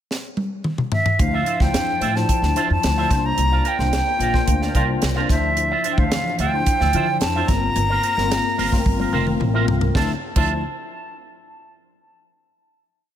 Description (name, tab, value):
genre	polished 1980s jazz-funk pop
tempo	110 BPM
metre	4/4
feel	straight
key	D minor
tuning	A4 = 440 Hz
part	tight funk drum kit	drums	0.1-10.5 s	crash cymbal, hi-hat, kick drum, snare drum, toms	-22 LUFS	equal	none
part	breathy silver concert flute	melody	0.9-10.6 s	E5 to Bb5	-23 LUFS	equal	analog delay
part	tine electric piano	accompaniment	1.2-10.6 s	E3 to C5	-25 LUFS	left 4 dB	ensemble chorus
part	electric guitar with an envelope filter	riff	1.2-10.5 s	F4 to F5	-28 LUFS	right 7 dB	analog chorus
part	upright bass	bass	1.2-10.6 s	F1 to D3	-23 LUFS	equal	none
room	light reverb, small room ambience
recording	none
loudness	-17 LUFS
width	side -10 dB against mid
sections	0.0-1.2 pickup bar; 1.2-9.9 verse; 9.9-12.1 final chord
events	drum fill 0.1-1.2, 8.9-9.9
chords	0.0 N.C.; 1.2 Dm9; 3.1 C9sus4; 5.3 Dm9; 7.5 Gm11; 9.9 Dm9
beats	0.10 0.65 | 1.20 1.74 2.29 2.84 | 3.38 3.93 4.48 5.02 | 5.57 6.12 6.67 7.21 | 7.76 8.31 8.86 9.40 | 9.95 10.50